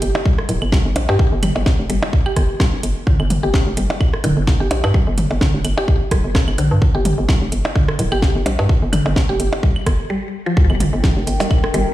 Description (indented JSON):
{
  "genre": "minimal techno",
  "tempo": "128 BPM",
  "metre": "4/4",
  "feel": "swing 55% on 16ths",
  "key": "G minor",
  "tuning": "A4 = 439 Hz",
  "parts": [
    { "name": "hollow knocking FM bass", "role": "bass", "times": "0.0-11.8 s", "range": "D1 to G2", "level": "-19 LUFS", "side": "equal", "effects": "sidechain pumping" },
    { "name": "house drum kit", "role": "drums", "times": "0.0-11.8 s", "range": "hi-hat, shaker, snare drum", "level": "-24 LUFS", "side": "equal", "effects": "none" },
    { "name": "minimal click drum kit", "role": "percussion", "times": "0.2-11.7 s", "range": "claves, percussion blips, rim click, toms", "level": "-24 LUFS", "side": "right 1 dB", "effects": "overdrive, ping-pong delay" },
    { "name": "mallet-like synth pluck", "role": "riff", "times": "0.3-11.8 s", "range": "D3 to G4", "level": "-23 LUFS", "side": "equal", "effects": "chorus, sidechain pumping, ping-pong delay" },
    { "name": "electronic kick drum", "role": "drums", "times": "0.3-11.6 s", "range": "none", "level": "-16 LUFS", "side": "equal", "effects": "none" },
    { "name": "sub drop", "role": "sound effects", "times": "10.6-11.9 s", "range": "none", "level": "-24 LUFS", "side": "equal", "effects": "none" },
    { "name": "warbly tape-like pad", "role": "texture", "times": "10.9-11.9 s", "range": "D4 to Bb5", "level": "-24 LUFS", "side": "left 1 dB", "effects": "chorus, built-in reverb, sidechain pumping" }
  ],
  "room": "light reverb, digital ambience",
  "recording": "played on a big sound system in a bare room, stone room reverb",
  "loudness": "-15 LUFS",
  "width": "side -15 dB against mid",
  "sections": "0.0-10.6 A section; 10.6-11.9 B section",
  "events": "break 10.1-10.6; drop 10.6-11.9; impact 10.6-11.9",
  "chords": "0.0 N.C.; 10.6 Gm"
}